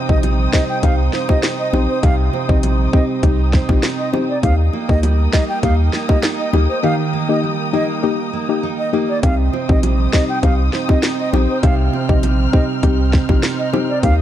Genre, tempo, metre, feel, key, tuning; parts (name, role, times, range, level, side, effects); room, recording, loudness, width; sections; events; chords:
dancehall; 100 BPM; 4/4; straight; C minor; A4 = 440 Hz
soft round pluck; accompaniment; 0.0-14.2 s; Bb3 to G4; -22 LUFS; left 7 dB; chorus
muted studio string section; sustained chords; 0.0-14.2 s; Eb4 to F6; -27 LUFS; left 3 dB; sidechain pumping
picked steel-string acoustic guitar; arpeggios; 0.0-14.2 s; C3 to Eb4; -22 LUFS; right 8 dB
reedy baroque flute; melody; 0.1-14.1 s; C5 to G5; -24 LUFS; right 2 dB; tape echo
punchy sub bass; bass; 0.1-14.2 s; Bb1 to Eb2; -16 LUFS; equal
island pop drum kit; drums; 0.1-14.2 s; hi-hat, kick drum, snare drum; -16 LUFS; equal; vintage 12-bit sampler grit
bongos; percussion; 0.2-13.9 s; -28 LUFS; right 4 dB
small room ambience; dark, warm production; -14 LUFS; side -11 dB against mid
0.0-9.2 A section; 9.2-14.2 A section
break 6.8-9.2
0.0 Cm; 4.4 Eb; 9.2 Cm